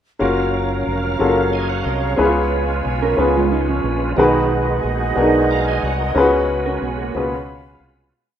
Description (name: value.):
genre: gospel.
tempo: 60 BPM (dotted quarters).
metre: 6/8.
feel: straight.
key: F# major.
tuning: A4 = 441 Hz.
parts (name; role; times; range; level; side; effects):
warm upright piano; accompaniment; 0.2-8.2 s; B2 to B4; -18 LUFS; left 2 dB; none.
breathy bright flute section; sustained chords; 0.2-8.1 s; C#5 to B5; -26 LUFS; right 1 dB; none.
bright tonewheel organ; sustained chords; 0.2-8.2 s; F#3 to A#5; -24 LUFS; right 4 dB; slow rotary speaker, overdrive, chorus vibrato.
fingered electric bass; bass; 0.2-8.1 s; E#1 to C#2; -23 LUFS; equal; none.
mellow electric guitar; second line; 3.0-7.3 s; E#3 to A#4; -23 LUFS; right 6 dB; analog chorus.
room: moderate lush hall reverb, RT60 2.9 s.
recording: rough home demo mix.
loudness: -16 LUFS.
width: side -9 dB against mid.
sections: 0.2-8.1 verse.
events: fade-out 6.2-8.1.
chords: 0.2 F#maj7; 2.2 C#7; 4.2 B6; 6.2 C#7sus4; 7.2 C#7.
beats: | 0.21 1.20 | 2.19 3.18 | 4.18 5.17 | 6.16 7.15.